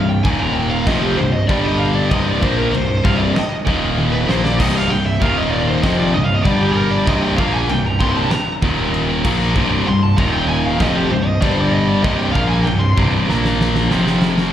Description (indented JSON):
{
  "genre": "heavy metal",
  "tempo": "97 BPM",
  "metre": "4/4",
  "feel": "straight",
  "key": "C minor",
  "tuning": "A4 = 440 Hz",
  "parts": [
    { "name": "high-gain lead guitar", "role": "melody", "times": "0.0-12.9 s", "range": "G4 to C6", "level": "-22 LUFS", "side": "equal", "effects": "distortion, slapback echo" },
    { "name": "heavy high-gain guitar", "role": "riff", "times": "0.0-14.5 s", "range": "C2 to Bb3", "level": "-22 LUFS", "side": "right 9 dB", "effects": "distortion, slapback echo" },
    { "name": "high-gain distorted guitar", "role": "riff", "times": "0.0-14.5 s", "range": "C2 to Bb3", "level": "-19 LUFS", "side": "left 5 dB", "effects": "distortion, slapback echo" },
    { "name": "fuzz picked electric bass", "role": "bass", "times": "0.0-14.5 s", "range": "C1 to Bb1", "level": "-21 LUFS", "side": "equal", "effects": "overdrive" },
    { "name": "big rock drum kit", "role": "drums", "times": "0.2-14.5 s", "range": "china cymbal, crash cymbal, kick drum, snare drum, toms", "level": "-22 LUFS", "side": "equal", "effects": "none" }
  ],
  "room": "studio reverb",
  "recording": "live gig heard through the venue's PA, recital hall reverb",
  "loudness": "-14 LUFS",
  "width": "side -10 dB against mid",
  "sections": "0.0-14.5 A section",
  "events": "lead electric guitar solo 0.0-14.5; drum fill 4.0-4.6, 13.3-14.5",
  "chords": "0.3 Eb5; 0.9 C5; 1.5 G5; 2.1 C5; 3.7 Eb5; 4.3 C5; 5.2 Eb5; 5.8 C5; 6.5 G5; 7.1 C5; 8.6 Eb5; 9.2 C5; 10.2 Eb5; 10.8 C5; 11.4 G5; 12.0 C5; 13.3 Bb5; 13.9 F5",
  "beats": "0.26 0.88 1.50 | 2.12 2.73 3.35 3.98 | 4.59 5.21 5.84 6.46 | 7.08 7.70 8.32 8.94 | 9.56 10.18 10.80 11.42 | 12.04 12.66 13.29 13.91"
}